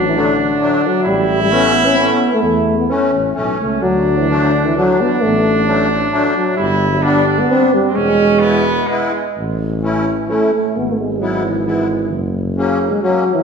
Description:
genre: alpine folk, alpine dance band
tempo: 131 BPM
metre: 3/4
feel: rubato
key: A major from 9.4 s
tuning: A4 = 438 Hz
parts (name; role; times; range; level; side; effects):
- mellow euphonium; melody; 0.0-13.4 s; C#3 to C#4; -16 LUFS; equal; none
- warm trumpet; second line; 0.0-9.4 s; G#3 to E4; -18 LUFS; right 2 dB; none
- dark tuba; bass; 0.0-13.0 s; E1 to E2; -21 LUFS; equal; none
- musette accordion; accompaniment; 0.1-13.2 s; E3 to E4; -20 LUFS; left 2 dB; none
room: wet scoring stage reverb, RT60 1.6 s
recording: recorded in a church or concert hall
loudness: -13 LUFS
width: side -6 dB against mid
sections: 0.0-9.4 A section; 9.4-13.4 B section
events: none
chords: 0.0 D; 1.1 A; 3.8 D; 6.6 G; 8.0 E; 9.4 A; 10.8 E/G#; 12.1 F#

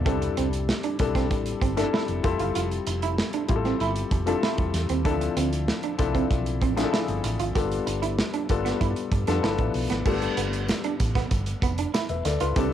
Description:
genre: polished 1980s jazz-funk pop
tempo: 96 BPM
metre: 4/4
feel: straight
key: unclear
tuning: A4 = 440 Hz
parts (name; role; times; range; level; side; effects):
- warm concert grand piano; accompaniment; 0.0-12.7 s; E3 to E5; -28 LUFS; left 7 dB; wide subtle chorus, cassette tape
- electric guitar through a small old amp; riff; 0.1-12.7 s; G3 to G4; -30 LUFS; right 10 dB; lush chorus, cassette tape
- hollow-body short-scale fingered electric bass; bass; 0.1-12.7 s; E1 to G2; -29 LUFS; right 1 dB; none
- modern studio drum kit; drums; 0.1-12.7 s; crash cymbal, hi-hat, kick drum, snare drum; -28 LUFS; right 1 dB; cassette tape
- tambourine; percussion; 10.1-12.7 s; none; -45 LUFS; left 10 dB; none
room: light reverb, studio ambience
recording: home recording on cassette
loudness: -23 LUFS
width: side -10 dB against mid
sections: 0.0-10.1 A section; 10.1-12.7 B section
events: none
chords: 0.1 C6; 2.2 Fmaj7; 5.1 Dm7; 7.6 G7; 9.4 G13; 10.1 G7

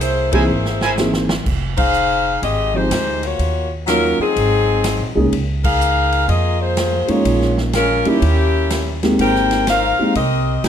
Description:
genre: jazz, big band swing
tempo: 124 BPM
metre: 4/4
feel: swing 66% on 8ths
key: F minor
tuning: A4 = 440 Hz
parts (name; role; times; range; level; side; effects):
- bright saxophone section; melody; 0.0-10.7 s; Gb3 to G5; -18 LUFS; left 2 dB; none
- upright bass; bass; 0.0-10.7 s; F1 to F2; -20 LUFS; right 1 dB; none
- swinging big-band drum kit; drums; 0.0-10.7 s; crash cymbal, hi-hat, kick drum, ride cymbal, snare drum; -24 LUFS; right 1 dB; none
- dark upright piano; accompaniment; 0.3-10.7 s; E3 to G#4; -18 LUFS; right 1 dB; none
- clear trumpet section; stabs; 0.3-0.9 s; E4 to G#5; -22 LUFS; right 4 dB; none
room: moderate large studio reverb, RT60 0.9 s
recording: dark, warm production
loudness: -14 LUFS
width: side -9 dB against mid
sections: 0.0-1.5 A section; 1.5-10.7 B section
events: band accent 0.2, 1.7, 5.6; drum fill 0.5-1.5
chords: 0.0 C7alt; 1.5 Fm9; 3.4 Ebm9; 4.4 Ab9; 5.3 Db69; 7.3 Bbm7; 8.2 Eb7b9; 9.2 Abmaj9

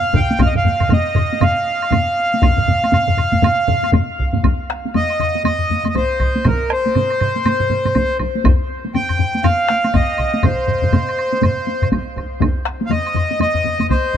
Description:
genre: japanese traditional, taiko drum ensemble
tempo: 120 BPM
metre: 4/4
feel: swing 60% on 16ths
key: F suspended pentatonic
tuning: A4 = 439 Hz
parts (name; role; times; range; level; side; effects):
- accordion; melody; 0.0-14.2 s; Bb4 to G5; -18 LUFS; equal; tape echo
- solo taiko drums; percussion; 0.1-11.9 s; none; -20 LUFS; right 4 dB; none
- taiko ensemble; percussion; 0.1-13.9 s; none; -20 LUFS; left 4 dB; none
- taiko ensemble; percussion; 0.1-14.2 s; none; -19 LUFS; equal; none
- taiko ensemble; percussion; 0.3-14.0 s; none; -21 LUFS; right 1 dB; none
- woodblock; percussion; 0.4-14.0 s; none; -28 LUFS; right 3 dB; none
room: light reverb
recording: dark, warm production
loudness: -14 LUFS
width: side -9 dB against mid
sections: 0.0-4.4 A section; 4.4-14.2 B section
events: speeding up 0.0-14.2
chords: none

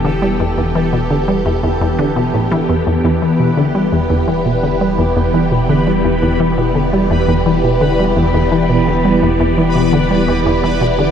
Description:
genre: ambient, sequencer-driven space music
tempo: 85 BPM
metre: 4/4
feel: straight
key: E minor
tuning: A4 = 440 Hz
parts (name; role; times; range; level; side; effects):
- phased string machine; sustained chords; 0.0-11.1 s; E3 to G5; -16 LUFS; left 1 dB; ensemble chorus, phaser
- resonant blip pluck; riff; 0.0-11.0 s; E2 to G3; -15 LUFS; equal; chorus, ping-pong delay
- warm sub bass; bass; 0.0-11.1 s; E1; -23 LUFS; equal; none
- bubbling stepped-filter texture; texture; 0.0-11.1 s; G4 to B5; -23 LUFS; right 2 dB; chorus, built-in reverb
room: moderate huge ambient reverb, RT60 9.1 s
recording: dreamy mix soaked in reverb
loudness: -12 LUFS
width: side -8 dB against mid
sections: 0.0-11.1 A section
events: none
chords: 0.0 Em7

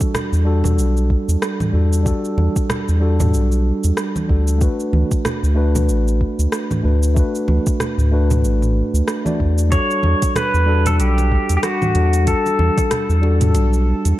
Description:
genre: sunset chillout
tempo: 94 BPM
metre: 4/4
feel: swing 57% on 16ths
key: E dorian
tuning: A4 = 440 Hz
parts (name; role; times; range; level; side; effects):
- mellow tine electric piano; accompaniment; 0.0-14.2 s; G3 to D5; -22 LUFS; moving between left 4 dB and right 3 dB; auto-pan, tape echo
- electronic kick drum; drums; 0.0-12.9 s; none; -19 LUFS; equal; overdrive
- smooth R&B drum kit; drums; 0.0-14.2 s; hi-hat, rim click, shaker, toms; -25 LUFS; right 1 dB; overdrive
- congas; percussion; 0.1-14.2 s; none; -26 LUFS; right 2 dB; none
- round analog bass; bass; 0.3-14.1 s; A1 to E2; -16 LUFS; equal; none
- pedal steel guitar; melody; 9.7-14.2 s; F#4 to C#5; -20 LUFS; left 1 dB; tape echo
room: light reverb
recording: dark, warm production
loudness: -15 LUFS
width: side -15 dB against mid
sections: 0.0-14.2 A section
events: none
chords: 0.0 Em11; 4.6 D6; 9.7 Em11

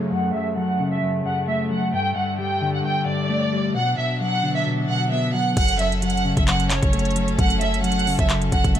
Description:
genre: hip hop, trap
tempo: 132 BPM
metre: 4/4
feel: half-time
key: F# phrygian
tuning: A4 = 438 Hz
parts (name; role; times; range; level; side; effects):
- warm symphonic violin section; melody; 0.0-8.8 s; C#5 to G5; -24 LUFS; right 2 dB; low-pass filter
- mellow electric guitar; accompaniment; 0.0-8.8 s; F#2 to B3; -23 LUFS; left 1 dB; low-pass filter
- rich chamber string section; sustained chords; 0.0-8.8 s; F#2 to A4; -31 LUFS; left 2 dB; low-pass filter
- downlifter; sound effects; 0.0-1.9 s; none; -44 LUFS; equal; none
- warm 808-style bass; bass; 5.6-8.8 s; F#1; -25 LUFS; equal; none
- trap drum kit; drums; 5.6-8.8 s; crash cymbal, handclaps, hi-hat, kick drum; -22 LUFS; equal; none
room: light reverb, digital ambience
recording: none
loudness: -19 LUFS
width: side -10 dB against mid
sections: 0.0-5.6 A section; 5.6-8.8 B section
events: filter sweep 0.0-5.6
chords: 0.0 F#m; 1.9 Gsus2; 3.8 Bm; 5.6 F#m

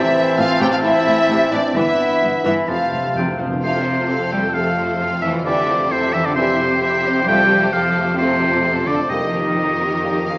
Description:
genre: cinematic, heroic adventure film score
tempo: 131 BPM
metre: 4/4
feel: straight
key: F lydian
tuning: A4 = 440 Hz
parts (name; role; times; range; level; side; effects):
- rich studio violin section; melody; 0.0-10.4 s; A4 to G5; -26 LUFS; equal; none
- clear oboe; second line; 0.0-10.4 s; C5 to B5; -20 LUFS; equal; none
- large flute ensemble; second line; 0.0-3.1 s; D5 to G5; -24 LUFS; equal; none
- warm clarinet; second line; 0.0-3.6 s; B4 to G5; -27 LUFS; left 1 dB; none
- warm symphonic violin section; second line; 0.0-10.4 s; G3 to G5; -28 LUFS; left 1 dB; none
- warm studio viola section; accompaniment; 0.0-10.4 s; C3 to A4; -25 LUFS; equal; none
- clear trombone section; sustained chords; 0.0-10.2 s; C3 to C4; -24 LUFS; equal; none
- mellow French horn section; sustained chords; 0.0-3.1 s; D4 to G4; -25 LUFS; left 1 dB; none
- concert harp; arpeggios; 0.0-10.4 s; F2 to C6; -31 LUFS; left 1 dB; none
- warm trumpet; stabs; 0.0-3.2 s; D4 to G4; -23 LUFS; equal; none
- warm symphonic cello section; bass; 0.4-10.4 s; F2 to G3; -23 LUFS; equal; none
- warm symphonic double bass section; bass; 0.4-10.4 s; F1 to F2; -28 LUFS; equal; none
- timpani; percussion; 2.7-3.6, 7.3-9.8 s; F2; -30 LUFS; equal; none
room: wet scoring stage reverb, RT60 1.9 s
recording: small speaker sound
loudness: -15 LUFS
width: side -25 dB against mid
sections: 0.0-3.6 A section; 3.6-10.4 B section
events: timpani fill 2.7-3.6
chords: 0.0 Am; 1.8 Em/G; 2.7 F; 5.5 C/F; 7.3 F; 9.1 Eb/F

